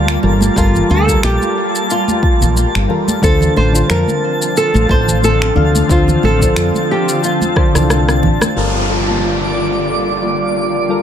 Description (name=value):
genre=sunset chillout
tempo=90 BPM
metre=4/4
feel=swing 56% on 16ths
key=G minor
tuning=A4 = 439 Hz
part: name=nylon-string guitar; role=melody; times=0.0-8.2 s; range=F4 to C5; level=-18 LUFS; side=right 1 dB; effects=digital delay
part: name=soft electric-piano-like synth keys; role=accompaniment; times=0.0-11.0 s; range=D3 to F5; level=-20 LUFS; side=moving between left 5 dB and right 3 dB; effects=chorus, auto-pan, low-pass filter, ping-pong delay
part: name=shimmering ambient pad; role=sustained chords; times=0.0-11.0 s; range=D3 to F4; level=-20 LUFS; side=equal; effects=chorus, built-in reverb
part: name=woody fretless electric bass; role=bass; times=0.0-11.0 s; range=G1 to F2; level=-16 LUFS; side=equal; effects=ensemble chorus
part: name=twinkling granular texture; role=texture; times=0.0-11.0 s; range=D5 to A6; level=-22 LUFS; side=right 1 dB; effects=built-in reverb
part: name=electronic finger snaps, shaker and rim click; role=drums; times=0.1-8.5 s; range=none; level=-20 LUFS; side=left 1 dB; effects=none
part: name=congas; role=percussion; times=0.2-8.5 s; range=none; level=-21 LUFS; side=right 3 dB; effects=none
part: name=electronic kick drum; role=drums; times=0.6-8.4 s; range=none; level=-16 LUFS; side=equal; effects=none
part: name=buzzing kalimba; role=arpeggios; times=8.6-11.0 s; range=F4 to A4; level=-22 LUFS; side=left 2 dB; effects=low-pass filter, ping-pong delay
part: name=downlifter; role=sound effects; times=8.6-11.0 s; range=none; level=-21 LUFS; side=equal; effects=none
room=light reverb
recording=none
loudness=-11 LUFS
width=side -9 dB against mid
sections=0.0-8.6 A section; 8.6-11.0 B section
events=drum fill 7.6-8.6; filter sweep on ambient pad 8.6-11.0; filter sweep on kalimba 8.6-11.0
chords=0.0 Gm9; 3.2 Dm7; 8.6 Gm9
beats=| 0.56 1.23 1.90 2.56 | 3.23 3.90 4.57 5.23 | 5.90 6.57 7.23 7.90 | 8.56 9.23 9.90 10.56